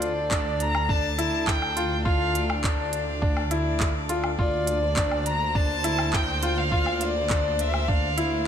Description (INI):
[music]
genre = piano and strings electronica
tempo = 103 BPM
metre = 4/4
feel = straight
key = D minor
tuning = A4 = 441 Hz
[part]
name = warm violin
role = melody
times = 0.0-8.5 s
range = D5 to Bb5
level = -28 LUFS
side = equal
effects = none
[part]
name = warm string quartet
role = sustained chords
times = 0.0-8.5 s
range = Bb3 to D5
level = -34 LUFS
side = left 1 dB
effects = none
[part]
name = clear concert grand piano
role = riff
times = 0.0-8.5 s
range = D4 to F4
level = -29 LUFS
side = left 3 dB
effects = digital delay
[part]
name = dark detuned saw bass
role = bass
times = 0.0-8.5 s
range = D2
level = -29 LUFS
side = right 1 dB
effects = sidechain pumping
[part]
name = organic electronic drum kit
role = drums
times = 0.0-8.3 s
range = handclaps, hi-hat, woodblock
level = -32 LUFS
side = equal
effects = none
[part]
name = electronic kick drum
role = drums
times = 0.3-8.0 s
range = none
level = -25 LUFS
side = right 1 dB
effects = none
[sound]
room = light reverb, studio ambience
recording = none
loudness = -22 LUFS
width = side -8 dB against mid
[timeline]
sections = 0.0-8.5 A section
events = none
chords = 0.0 Dm; 4.4 Bbmaj7/D